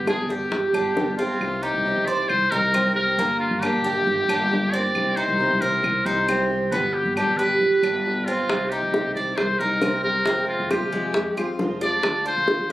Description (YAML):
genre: latin, Cuban son and guajira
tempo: 135 BPM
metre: 4/4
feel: straight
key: C minor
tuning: A4 = 440 Hz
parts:
  - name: trumpet with metal mute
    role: melody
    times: 0.0-12.7 s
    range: F4 to D5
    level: -23 LUFS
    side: left 1 dB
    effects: none
  - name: fingerpicked steel-string acoustic guitar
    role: accompaniment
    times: 0.0-12.7 s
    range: B2 to G4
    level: -29 LUFS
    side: left 1 dB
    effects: none
  - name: Cuban tres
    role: arpeggios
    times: 0.0-12.7 s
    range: Ab3 to C5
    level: -26 LUFS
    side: right 2 dB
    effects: none
  - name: upright bass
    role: bass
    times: 0.0-12.7 s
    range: G1 to F2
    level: -31 LUFS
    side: equal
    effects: none
  - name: bongos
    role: percussion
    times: 0.1-1.4, 8.5-12.7 s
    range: none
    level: -26 LUFS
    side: left 1 dB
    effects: none
  - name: claves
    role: percussion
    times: 0.1-12.3 s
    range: none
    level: -34 LUFS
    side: equal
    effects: none
room: moderate large studio reverb, RT60 0.9 s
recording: recorded on a phone in the room, club reverb, compression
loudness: -20 LUFS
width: side -15 dB against mid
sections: 0.0-1.4 A section; 1.4-12.7 A section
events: none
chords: 0.0 G; 1.4 Cm; 3.2 Gm; 5.0 Cm; 6.7 G; 8.5 Cm; 10.3 Fm; 12.0 Ddim